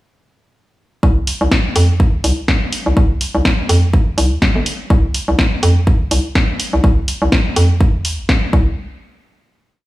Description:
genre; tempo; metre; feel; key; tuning
minimal techno; 124 BPM; 4/4; swing 57% on 16ths; C minor; A4 = 440 Hz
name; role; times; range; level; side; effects
hollow knocking FM bass; bass; 1.0-8.8 s; G1 to F2; -14 LUFS; equal; tube saturation, sidechain pumping
electronic kick drum; drums; 1.0-8.6 s; none; -14 LUFS; equal; none
punchy analog drum machine; drums; 1.3-8.4 s; hi-hat, snare drum; -20 LUFS; equal; none
room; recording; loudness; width
little or no reverb; studio reverb; -13 LUFS; side -17 dB against mid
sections
1.0-8.8 groove; 8.8-9.9 final hit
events
none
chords
none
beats
| 1.03 1.51 2.00 2.48 | 2.97 3.45 3.94 4.42 | 4.90 5.39 5.87 6.35 | 6.84 7.32 7.81 8.29

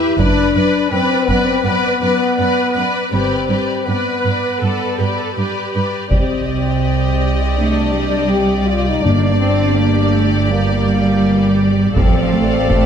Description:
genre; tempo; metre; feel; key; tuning
cinematic, epic orchestral film score; 82 BPM; 4/4; straight; C dorian from 6.1 s; A4 = 440 Hz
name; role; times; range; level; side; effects
rich studio violin section; melody; 0.0-12.9 s; D5 to F5; -28 LUFS; left 4 dB; none
rich symphonic violin section; second line; 0.0-12.9 s; B4 to D5; -23 LUFS; left 3 dB; none
clear symphonic viola section; accompaniment; 0.0-12.9 s; G4 to B4; -23 LUFS; right 2 dB; none
mellow French horn section; sustained chords; 0.0-12.9 s; Bb3 to G4; -19 LUFS; left 4 dB; none
clear symphonic double bass section; bass; 0.2-12.9 s; F#1 to C2; -19 LUFS; right 4 dB; none
rich symphonic cello section; bass; 0.2-12.9 s; F#2 to C4; -19 LUFS; right 2 dB; none
taiko ensemble; drums; 0.2-1.6, 6.1-7.5, 12.0-12.9 s; none; -17 LUFS; equal; none
timpani; percussion; 6.1-10.1 s; G2 to C3; -21 LUFS; left 1 dB; none
room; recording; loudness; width
moderate scoring stage reverb, RT60 1.6 s; none; -13 LUFS; side -8 dB against mid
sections
0.0-6.1 A section; 6.1-12.9 B section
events
none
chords
0.2 Bm/F#; 3.1 G; 6.1 Cmadd9; 9.1 Gm; 12.0 Dm/A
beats
| 0.19 0.92 1.65 2.38 | 3.13 3.88 4.63 5.38 | 6.12 6.85 7.59 8.32 | 9.05 9.78 10.50 11.23 | 11.96 12.69

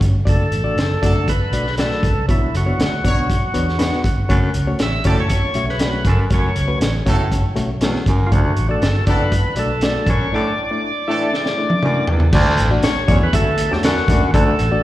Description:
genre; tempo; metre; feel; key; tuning
uptempo 1960s-style soul; 120 BPM; 4/4; straight; D major; A4 = 441 Hz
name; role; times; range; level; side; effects
barky reed electric piano; accompaniment; 0.0-14.8 s; A3 to E5; -24 LUFS; left 3 dB; overdrive, fast tremolo, slapback echo
vintage muted fingered electric bass; bass; 0.0-14.8 s; F#1 to E2; -20 LUFS; equal; none
crunchy breakbeat drum kit; drums; 0.0-14.7 s; crash cymbal, hi-hat, kick drum, snare drum, toms; -19 LUFS; equal; none
overdriven tonewheel organ; melody; 0.3-14.8 s; E4 to E5; -23 LUFS; equal; slow rotary speaker, slapback echo, tape echo
clear horn section; second line; 1.0-11.4 s; E3 to C#5; -27 LUFS; right 1 dB; slapback echo
raspy baritone saxophone; riff; 4.3-14.5 s; D2 to A2; -23 LUFS; right 1 dB; slapback echo
room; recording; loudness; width
light reverb, small room ambience; live gig heard through the venue's PA, recital hall reverb; -15 LUFS; side -15 dB against mid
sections
0.0-12.3 A section; 12.3-14.8 B section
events
drum fill 11.3-12.3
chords
0.3 D/F#; 2.3 Bmadd9; 4.3 F#m; 8.3 D/F#; 10.3 Asus4; 12.3 D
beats
| 0.27 0.78 1.28 1.78 | 2.29 2.79 3.29 3.79 | 4.30 4.80 5.30 5.80 | 6.31 6.81 7.31 7.81 | 8.32 8.82 9.32 9.82 | 10.32 10.83 11.33 11.83 | 12.33 12.83 13.34 13.84 | 14.34

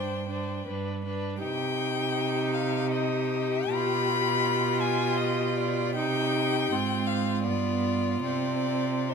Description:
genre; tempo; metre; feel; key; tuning
classical, slow romantic movement for string quartet; 79 BPM; 3/4; uneven beats, rubato; unclear; A4 = 440 Hz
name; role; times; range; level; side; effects
rich violin; melody; 0.0-9.1 s; C5 to B5; -30 LUFS; left 9 dB; none
rich violin; second line; 0.0-9.1 s; Eb4 to C5; -32 LUFS; left 6 dB; none
clear viola; accompaniment; 0.0-9.1 s; B3 to F4; -31 LUFS; right 4 dB; none
clear cello; bass; 0.0-9.1 s; G2 to C3; -31 LUFS; right 7 dB; none
room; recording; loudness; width
moderate recital hall reverb, RT60 1.7 s; close, detailed microphones; -25 LUFS; side -6 dB against mid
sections
0.0-9.1 A section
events
none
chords
0.0 Gsus4; 1.4 Cm; 3.7 G7/B; 6.0 Cm; 6.7 Fm/Ab; 7.5 G7; 8.2 N.C.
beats
0.65 | 1.42 2.18 2.92 | 3.73 4.45 5.18 | 5.97 6.71 7.45 | 8.24 9.10

